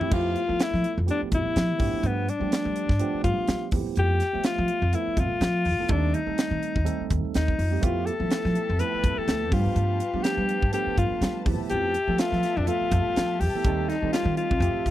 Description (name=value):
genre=electric jazz fusion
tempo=124 BPM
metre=4/4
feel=swing 56% on 16ths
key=F lydian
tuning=A4 = 442 Hz
part: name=bright alto saxophone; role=melody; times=0.0-14.9 s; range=B3 to B4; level=-27 LUFS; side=left 4 dB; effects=slapback echo
part: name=barky tine electric piano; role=accompaniment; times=0.0-14.9 s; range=F3 to E5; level=-32 LUFS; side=right 11 dB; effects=overdrive, lush chorus
part: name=upright bass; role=bass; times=0.0-14.9 s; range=C2 to G3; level=-27 LUFS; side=equal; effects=none
part: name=crisp fusion drum kit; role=drums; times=0.0-14.9 s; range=crash cymbal, hi-hat, kick drum, snare drum, toms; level=-27 LUFS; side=equal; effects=none
part: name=muted studio string section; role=sustained chords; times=7.8-14.9 s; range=F4 to A5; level=-39 LUFS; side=left 4 dB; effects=none
room=light reverb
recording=dry, close 1970s-style studio recording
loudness=-22 LUFS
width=side -13 dB against mid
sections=0.1-14.9 A section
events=none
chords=0.1 Fmaj9#11; 1.8 G9; 3.7 Fmaj9#11; 5.9 Cm6/Eb; 7.8 Fmaj9#11; 9.5 G9; 11.5 Fmaj9#11; 13.6 Cm6/Eb